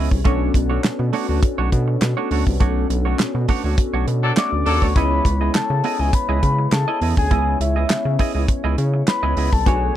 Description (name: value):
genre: early-eighties boogie funk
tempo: 102 BPM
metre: 4/4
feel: straight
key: C# phrygian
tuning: A4 = 440 Hz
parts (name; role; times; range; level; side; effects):
- funky polysynth comp; accompaniment; 0.0-10.0 s; G#3 to C#5; -26 LUFS; left 2 dB; chorus
- semi-hollow electric guitar; riff; 0.0-9.9 s; A3 to D#5; -26 LUFS; right 10 dB; lush chorus
- rubbery square bass; bass; 0.0-9.9 s; B1 to C#3; -20 LUFS; equal; none
- damped 70s drum kit; drums; 0.1-9.8 s; handclaps, hi-hat, kick drum, snare drum; -19 LUFS; equal; none
- clear horn section; second line; 4.2-4.8 s; F#3 to A4; -23 LUFS; left 3 dB; tape echo
- soft octave-layered synth lead; melody; 4.4-10.0 s; E5 to D6; -23 LUFS; left 3 dB; chorus
room: little or no reverb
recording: dry, close 1970s-style studio recording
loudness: -16 LUFS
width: side -12 dB against mid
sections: 0.0-10.0 A section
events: band accent 2.6-5.0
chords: 0.3 Bm9; 5.0 C#m9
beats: | 0.25 0.84 1.43 2.02 | 2.60 3.19 3.78 4.37 | 4.96 5.55 6.13 6.72 | 7.31 7.90 8.49 9.07 | 9.66